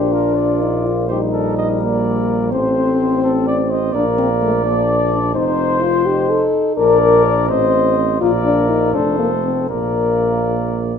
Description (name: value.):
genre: classical, brass quintet.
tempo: 84 BPM (dotted quarters).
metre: 6/8.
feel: rubato.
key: Bb major.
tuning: A4 = 439 Hz.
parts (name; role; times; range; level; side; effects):
dark trumpet; melody; 0.0-10.8 s; F4 to D5; -22 LUFS; left 7 dB; none.
warm flugelhorn; second line; 0.0-10.9 s; Bb4 to Eb5; -24 LUFS; right 7 dB; none.
clear euphonium; accompaniment; 0.0-10.9 s; G3 to Eb4; -23 LUFS; right 2 dB; none.
mellow French horn; accompaniment; 0.0-10.9 s; A3 to D5; -18 LUFS; left 4 dB; none.
warm tuba; bass; 0.0-10.9 s; F1 to Bb1; -21 LUFS; right 4 dB; none.
room: moderate recital hall reverb, RT60 1.5 s.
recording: minimal, uncompressed stereo recording.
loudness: -14 LUFS.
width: side -7 dB against mid.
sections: 0.0-11.0 A section.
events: none.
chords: 0.0 Bb; 1.1 Eb/Bb; 2.5 Amadd11; 3.9 Bb; 5.3 F7; 6.8 Bb; 7.5 Adim; 8.2 Bb; 8.9 F; 9.7 Bb.